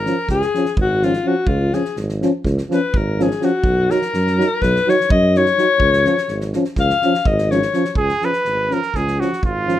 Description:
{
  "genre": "balkan folk, Balkan brass band",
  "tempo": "250 BPM (eighths)",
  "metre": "9/8",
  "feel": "straight",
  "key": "Db mixolydian",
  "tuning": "A4 = 440 Hz",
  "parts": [
    { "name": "bright alto saxophone", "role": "second line", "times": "0.0-8.0 s", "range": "F4 to F5", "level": "-18 LUFS", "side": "left 4 dB", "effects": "none" },
    { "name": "mellow tuba", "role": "bass", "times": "0.0-9.8 s", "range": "Ab1 to Gb2", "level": "-20 LUFS", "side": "right 1 dB", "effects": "none" },
    { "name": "dark euphonium", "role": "accompaniment", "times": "0.1-9.8 s", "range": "Db4 to Eb4", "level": "-22 LUFS", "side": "left 5 dB", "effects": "none" },
    { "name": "mellow euphonium", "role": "accompaniment", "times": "0.1-9.8 s", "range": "F3 to Gb3", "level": "-22 LUFS", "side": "right 5 dB", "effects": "none" },
    { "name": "natural country drum kit", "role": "percussion", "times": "0.1-9.7 s", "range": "kick drum, snare drum", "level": "-24 LUFS", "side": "right 1 dB", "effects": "none" },
    { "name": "clear trumpet", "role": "melody", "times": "8.0-9.8 s", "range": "F4 to Cb5", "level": "-19 LUFS", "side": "right 2 dB", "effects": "none" }
  ],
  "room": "moderate small room reverb, RT60 0.5 s",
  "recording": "none",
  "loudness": "-15 LUFS",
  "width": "side -12 dB against mid",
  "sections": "0.0-8.0 A section; 8.0-9.8 B section",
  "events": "alto saxophone solo 0.0-8.0",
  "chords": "0.0 Db; 3.6 Cb; 5.8 Db"
}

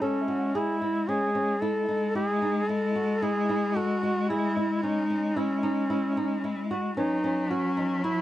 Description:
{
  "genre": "contemporary instrumental, chamber music in an uneven meter",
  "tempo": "112 BPM",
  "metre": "7/4",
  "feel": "straight",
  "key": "unclear",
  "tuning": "A4 = 435 Hz",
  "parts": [
    { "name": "warm duduk", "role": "melody", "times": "0.0-8.2 s", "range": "C#4 to A4", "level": "-27 LUFS", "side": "equal", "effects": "none" },
    { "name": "rich cello", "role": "second line", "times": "0.0-8.2 s", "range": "F#3 to G#3", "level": "-30 LUFS", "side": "left 2 dB", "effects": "none" },
    { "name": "flamenco guitar", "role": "arpeggios", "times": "0.0-8.2 s", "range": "C#4 to A4", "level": "-32 LUFS", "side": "right 2 dB", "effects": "none" },
    { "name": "worn celesta", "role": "texture", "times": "0.0-8.2 s", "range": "B4 to F#5", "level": "-40 LUFS", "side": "left 1 dB", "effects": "none" }
  ],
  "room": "wet studio reverb, RT60 0.5 s",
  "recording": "dark, warm production",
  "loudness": "-25 LUFS",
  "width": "side -13 dB against mid",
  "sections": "0.0-8.2 A section",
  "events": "none",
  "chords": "0.0 Amaj7 (rootless); 7.0 F#5"
}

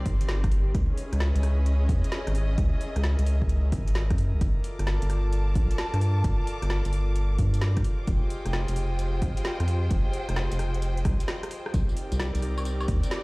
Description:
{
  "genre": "UK garage, two-step garage",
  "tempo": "131 BPM",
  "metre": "4/4",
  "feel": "swing 66% on 16ths",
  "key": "C minor",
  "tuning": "A4 = 440 Hz",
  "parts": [
    { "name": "airy breathy pad", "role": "sustained chords", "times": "0.0-13.2 s", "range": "Eb4 to Eb5", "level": "-38 LUFS", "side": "equal", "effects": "chorus, sidechain pumping" },
    { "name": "rubbery square bass", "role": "bass", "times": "0.0-13.0 s", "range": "F1 to G2", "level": "-25 LUFS", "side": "equal", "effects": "none" },
    { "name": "clear symphonic string section", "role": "texture", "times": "0.0-13.2 s", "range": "C4 to D6", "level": "-37 LUFS", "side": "equal", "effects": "sidechain pumping" },
    { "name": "electronic kick drum", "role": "drums", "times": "0.1-13.0 s", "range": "none", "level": "-26 LUFS", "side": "equal", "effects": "none" },
    { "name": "garage drum kit", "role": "drums", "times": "0.1-13.2 s", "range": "hi-hat, rim click, snare drum, tambourine, woodblock", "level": "-35 LUFS", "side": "equal", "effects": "none" }
  ],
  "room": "little or no reverb",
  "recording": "played on a big sound system in a bare room, stone room reverb, vinyl crackle",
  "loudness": "-24 LUFS",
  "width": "side -26 dB against mid",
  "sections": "0.0-11.7 A section; 11.7-13.2 A section",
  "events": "drum fill 11.1-11.7; break 11.3-11.7; band accent 11.6",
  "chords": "0.0 Cm9; 0.7 Dbm9; 4.4 Gm9; 7.8 Fm9; 11.7 Cm9"
}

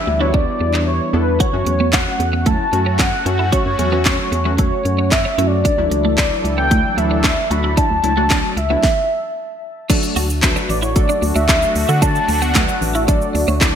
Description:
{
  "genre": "dance-pop",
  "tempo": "113 BPM",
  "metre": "4/4",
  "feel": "straight",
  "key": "unclear",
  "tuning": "A4 = 440 Hz",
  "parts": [
    { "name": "warm velvety synth lead", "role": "melody", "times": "0.0-13.8 s", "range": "B4 to B5", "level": "-20 LUFS", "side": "equal", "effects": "chorus, ping-pong delay" },
    { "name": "funky polysynth comp", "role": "accompaniment", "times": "0.0-13.8 s", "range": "F#3 to B4", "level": "-24 LUFS", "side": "equal", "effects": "chorus, sidechain pumping" },
    { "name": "sweeping resonant pad", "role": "sustained chords", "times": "0.0-13.8 s", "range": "E3 to A4", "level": "-26 LUFS", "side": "equal", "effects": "chorus, sidechain pumping" },
    { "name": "twelve-string electric guitar", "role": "riff", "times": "0.1-13.7 s", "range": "A3 to F#4", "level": "-25 LUFS", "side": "right 4 dB", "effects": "analog chorus" },
    { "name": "organ-like FM bass", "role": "bass", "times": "0.1-13.8 s", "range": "A1 to D3", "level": "-20 LUFS", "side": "equal", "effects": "sidechain pumping" },
    { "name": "house drum kit", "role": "drums", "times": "0.3-13.7 s", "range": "crash cymbal, handclaps, hi-hat, kick drum, shaker, snare drum", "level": "-18 LUFS", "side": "equal", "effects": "gated reverb" }
  ],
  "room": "light reverb",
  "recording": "bright 1980s-style digital production",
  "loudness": "-14 LUFS",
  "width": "side -8 dB against mid",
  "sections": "0.0-9.9 A section; 9.9-13.8 B section",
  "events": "silent gap 0.9-1.4; stop 8.8-9.9",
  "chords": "0.0 Em7; 1.4 F#m; 5.6 Dadd9; 9.9 D"
}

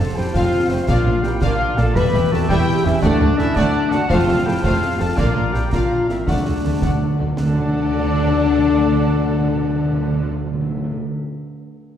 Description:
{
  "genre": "cinematic, heroic adventure film score",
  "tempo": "111 BPM (dotted quarters)",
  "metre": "6/8",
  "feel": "straight",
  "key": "unclear",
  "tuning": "A4 = 441 Hz",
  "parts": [
    { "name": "warm symphonic violin section", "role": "melody", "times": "0.0-10.3 s", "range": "G4 to F#5", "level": "-34 LUFS", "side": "left 4 dB", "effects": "none" },
    { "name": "mellow clarinet", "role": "second line", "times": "0.0-10.3 s", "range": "A3 to D5", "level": "-30 LUFS", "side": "left 1 dB", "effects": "none" },
    { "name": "mellow cor anglais", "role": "second line", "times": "0.0-10.3 s", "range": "C5 to F#5", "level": "-34 LUFS", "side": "right 2 dB", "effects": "none" },
    { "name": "small flute group", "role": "second line", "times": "0.0-10.3 s", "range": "F5 to Bb5", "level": "-32 LUFS", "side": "right 2 dB", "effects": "none" },
    { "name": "warm symphonic violin section", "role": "second line", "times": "0.0-10.3 s", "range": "E4 to F5", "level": "-33 LUFS", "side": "left 2 dB", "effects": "none" },
    { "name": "rich symphonic viola section", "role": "accompaniment", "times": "0.0-10.3 s", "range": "G3 to A4", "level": "-29 LUFS", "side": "right 3 dB", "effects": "none" },
    { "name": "warm French horn section", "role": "sustained chords", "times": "0.0-10.3 s", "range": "C4 to B4", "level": "-21 LUFS", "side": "left 5 dB", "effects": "none" },
    { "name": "concert harp", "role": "arpeggios", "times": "0.0-11.3 s", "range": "Bb2 to C6", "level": "-29 LUFS", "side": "left 3 dB", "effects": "none" },
    { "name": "dark trumpet section", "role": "stabs", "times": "0.0-10.3 s", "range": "C5 to B5", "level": "-27 LUFS", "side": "equal", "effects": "none" },
    { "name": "dark symphonic cello section", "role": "bass", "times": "0.0-10.3 s", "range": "D2 to D3", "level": "-25 LUFS", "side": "right 2 dB", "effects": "none" },
    { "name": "rich symphonic double bass section", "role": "bass", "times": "0.0-10.3 s", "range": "E1 to D2", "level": "-23 LUFS", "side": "right 2 dB", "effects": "none" },
    { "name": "concert snare drum, concert bass drum and clash cymbals", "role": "drums", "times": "0.3-7.5 s", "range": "none", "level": "-24 LUFS", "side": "equal", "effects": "none" },
    { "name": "timpani", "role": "percussion", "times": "3.0-3.5, 6.3-11.0 s", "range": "D3", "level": "-23 LUFS", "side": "right 2 dB", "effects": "none" }
  ],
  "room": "wet scoring stage reverb, RT60 1.6 s",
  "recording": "heard from further back in the room",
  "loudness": "-16 LUFS",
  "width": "side -9 dB against mid",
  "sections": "0.0-7.4 A section; 7.4-9.5 B section",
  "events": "timpani fill 6.3-7.4",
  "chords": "0.0 F; 0.9 Bb; 2.0 Em; 3.0 D; 4.1 F; 5.2 Bb; 6.3 D"
}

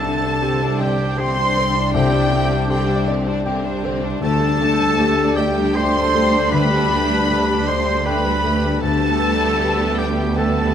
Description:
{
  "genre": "cinematic, emotional film score for orchestra",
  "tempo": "78 BPM",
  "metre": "3/4",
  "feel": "rubato",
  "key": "unclear",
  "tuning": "A4 = 440 Hz",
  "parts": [
    { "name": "warm studio violin section", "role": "melody", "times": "0.0-10.7 s", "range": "G5 to C6", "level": "-24 LUFS", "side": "left 3 dB", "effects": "none" },
    { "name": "mellow clarinet", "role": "second line", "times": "0.0-10.7 s", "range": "G4 to C5", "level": "-26 LUFS", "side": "left 1 dB", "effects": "none" },
    { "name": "rich studio violin section", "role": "second line", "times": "0.0-10.7 s", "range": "A3 to C5", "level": "-30 LUFS", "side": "left 3 dB", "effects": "none" },
    { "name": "small flute group", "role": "second line", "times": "0.0-10.7 s", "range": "G5 to C6", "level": "-27 LUFS", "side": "right 2 dB", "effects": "none" },
    { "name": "warm oboe", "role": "second line", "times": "0.0-10.7 s", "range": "G4 to C5", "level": "-26 LUFS", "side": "right 2 dB", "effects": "none" },
    { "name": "felt-muted upright piano", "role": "accompaniment", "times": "0.0-10.7 s", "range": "C2 to G5", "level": "-25 LUFS", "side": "left 2 dB", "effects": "none" },
    { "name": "rich studio viola section", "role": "accompaniment", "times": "0.0-10.7 s", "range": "D3 to D4", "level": "-26 LUFS", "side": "right 2 dB", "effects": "none" },
    { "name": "warm French horn section", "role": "sustained chords", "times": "0.0-10.7 s", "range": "G3 to D4", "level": "-26 LUFS", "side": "left 2 dB", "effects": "none" },
    { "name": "concert harp", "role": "arpeggios", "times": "0.0-10.7 s", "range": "C3 to B5", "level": "-25 LUFS", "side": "left 8 dB", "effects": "none" },
    { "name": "rich studio cello section", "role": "bass", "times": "0.0-10.7 s", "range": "C2 to D2", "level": "-25 LUFS", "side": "right 4 dB", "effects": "none" },
    { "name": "rich studio double bass section", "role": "bass", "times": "0.0-10.7 s", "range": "C2 to D2", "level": "-26 LUFS", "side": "right 4 dB", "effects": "none" }
  ],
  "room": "moderate scoring stage reverb, RT60 1.7 s",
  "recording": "close, detailed microphones",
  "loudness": "-16 LUFS",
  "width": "side -8 dB against mid",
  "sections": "0.0-10.7 A section",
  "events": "none",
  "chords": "0.0 Csus2; 4.2 Dsus4; 8.8 Gadd9/D"
}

